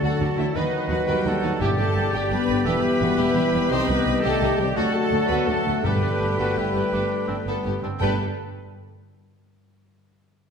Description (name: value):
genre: cinematic, heroic adventure film score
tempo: 113 BPM (dotted quarters)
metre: 12/8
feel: straight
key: G major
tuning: A4 = 440 Hz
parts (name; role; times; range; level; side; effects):
- rich chamber violin section; melody; 0.0-8.2 s; A3 to B4; -32 LUFS; left 3 dB; none
- dark clarinet; second line; 0.0-8.2 s; D4 to B4; -32 LUFS; left 1 dB; none
- rich symphonic violin section; second line; 0.0-8.2 s; D#5 to C6; -34 LUFS; left 1 dB; none
- silver concert flute; second line; 0.0-8.2 s; B4 to A5; -32 LUFS; left 2 dB; none
- clear symphonic viola section; accompaniment; 0.0-8.2 s; G3 to C5; -30 LUFS; right 1 dB; none
- clear trombone section; sustained chords; 0.0-8.2 s; D3 to A3; -32 LUFS; right 4 dB; none
- dark French horn section; sustained chords; 0.0-8.2 s; D#3 to C4; -28 LUFS; left 6 dB; none
- brilliant trumpet section; stabs; 0.0-8.2 s; G4 to B4; -30 LUFS; equal; none
- dark symphonic cello section; bass; 0.0-8.2 s; C2 to D#3; -30 LUFS; right 2 dB; none
- rich symphonic double bass section; bass; 0.0-8.2 s; E1 to D#2; -30 LUFS; right 3 dB; none
- mellow cor anglais; second line; 0.6-8.2 s; B3 to B4; -32 LUFS; right 3 dB; none
- timpani; percussion; 1.6-2.1, 5.8-8.2 s; G2; -30 LUFS; left 1 dB; none
room: wet scoring stage reverb, RT60 1.5 s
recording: none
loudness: -20 LUFS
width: side -6 dB against mid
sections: 0.0-8.0 A section; 8.0-10.1 B section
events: none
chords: 0.0 D; 0.6 B/D#; 1.6 G; 2.7 Em; 3.7 Cm; 4.8 D; 5.8 Gadd9; 8.0 N.C.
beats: 0.03 0.56 1.08 | 1.61 2.14 2.66 3.18 | 3.71 4.24 4.76 5.29 | 5.84 6.38 6.93 7.47 | 8.01